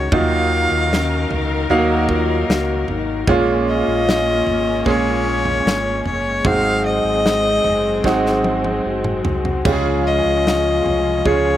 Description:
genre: pop ballad.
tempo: 75 BPM.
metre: 4/4.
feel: straight.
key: unclear.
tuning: A4 = 443 Hz.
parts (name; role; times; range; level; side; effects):
warm violin; melody; 0.0-11.6 s; Db5 to F5; -20 LUFS; equal; slapback echo.
dark French horn section; second line; 0.0-11.6 s; Db4 to Ab4; -24 LUFS; left 6 dB; none.
bright grand piano; accompaniment; 0.0-11.6 s; Ab2 to F5; -20 LUFS; right 3 dB; slapback echo.
rich studio string section; sustained chords; 0.0-11.6 s; Eb3 to F5; -26 LUFS; left 1 dB; none.
sub bass with octave; bass; 0.0-11.6 s; Gb1 to Eb2; -24 LUFS; left 1 dB; none.
modern studio drum kit; drums; 0.1-11.4 s; crash cymbal, kick drum, snare drum, toms; -22 LUFS; equal; none.
room: little or no reverb.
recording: recorded outdoors, with no room sound.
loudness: -15 LUFS.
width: side -12 dB against mid.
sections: 0.0-11.6 A section.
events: drum fill 8.0-9.7.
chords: 0.1 Ebmadd9; 3.3 Bbm7; 6.4 Ab7; 9.7 Db.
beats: | 0.12 0.91 1.70 2.48 | 3.27 4.07 4.86 5.65 | 6.45 7.24 8.04 8.85 | 9.65 10.46 11.26.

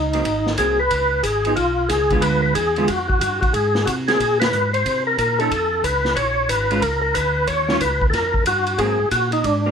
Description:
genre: soul jazz organ trio.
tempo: 183 BPM.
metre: 4/4.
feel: swing 64% on 8ths.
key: unclear.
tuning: A4 = 440 Hz.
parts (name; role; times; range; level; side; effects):
overdriven tonewheel organ; melody; 0.0-9.7 s; D4 to Db5; -19 LUFS; left 1 dB; slow rotary speaker, chorus vibrato.
mellow tonewheel organ; bass; 0.0-9.7 s; Ab1 to C3; -25 LUFS; equal; chorus vibrato, slow rotary speaker.
vintage hollow-body jazz guitar; accompaniment; 0.1-9.7 s; D3 to A4; -24 LUFS; right 4 dB; none.
vintage drum kit; drums; 0.1-9.5 s; hi-hat, kick drum, ride cymbal, snare drum; -25 LUFS; equal; none.
room: moderate small room reverb, RT60 0.6 s.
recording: band playing live in one room.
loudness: -17 LUFS.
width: side -7 dB against mid.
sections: 0.0-9.7 A section.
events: band accent 4.4.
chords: 0.2 Ab9; 0.9 Db7; 2.2 Ddim7; 3.5 Abadd9; 4.9 Bbmadd9; 5.5 Faug; 6.2 Bbm7; 7.5 Eb9; 8.8 Ab9.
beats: 0.24 0.57 | 0.90 1.23 1.56 1.89 | 2.22 2.55 2.88 3.21 | 3.54 3.87 4.20 4.52 | 4.85 5.18 5.51 5.84 | 6.16 6.49 6.82 7.15 | 7.47 7.80 8.13 8.46 | 8.79 9.11 9.44.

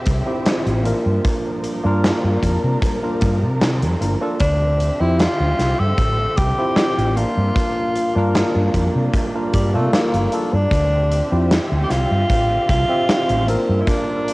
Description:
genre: vaporwave.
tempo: 76 BPM.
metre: 4/4.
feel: straight.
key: D minor.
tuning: A4 = 438 Hz.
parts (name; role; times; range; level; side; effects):
warm symphonic string section; sustained chords; 0.0-14.3 s; D3 to E5; -28 LUFS; right 1 dB; vintage 12-bit sampler grit, cassette tape.
mellow fretless electric bass; bass; 0.1-13.8 s; G1 to C3; -19 LUFS; equal; tube saturation.
big rock drum kit; drums; 0.1-14.3 s; hi-hat, snare drum; -23 LUFS; equal; cassette tape.
kick drum; drums; 0.1-14.0 s; none; -23 LUFS; equal; cassette tape.
barky tine electric piano; accompaniment; 0.3-14.3 s; Bb3 to E5; -23 LUFS; equal; wide subtle chorus, cassette tape, tape echo.
clear tenor saxophone; melody; 4.4-14.3 s; G3 to A4; -21 LUFS; equal; tape echo.
room: moderate spring reverb, RT60 2.5 s.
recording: home recording on cassette.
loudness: -16 LUFS.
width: side -21 dB against mid.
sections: 0.0-14.3 A section.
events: none.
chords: 0.0 Dm11; 1.2 Gm7; 4.4 Dm11; 7.6 Gm7; 10.7 Dm11.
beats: 0.46 | 1.25 2.04 2.83 3.62 | 4.41 5.20 5.98 6.77 | 7.56 8.35 9.14 9.93 | 10.72 11.51 12.30 13.09 | 13.88.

